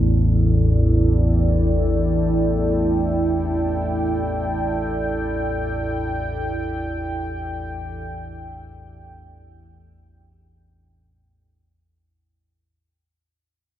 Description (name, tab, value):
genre	ambient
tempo	free time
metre	none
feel	none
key	unclear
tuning	A4 = 440 Hz
part	dark analog pad	sustained chords	0.0-12.6 s	E4 to G5	-24 LUFS	right 2 dB	chorus, phaser, shimmer reverb
part	analog drone	drone	0.0-12.7 s	A1 to E2	-21 LUFS	equal	chorus
room	moderate huge ambient reverb, RT60 7.2 s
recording	in a vast, echoing space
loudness	-19 LUFS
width	side -11 dB against mid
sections	0.0-12.6 A section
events	fade-out 1.3-12.6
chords	0.0 Em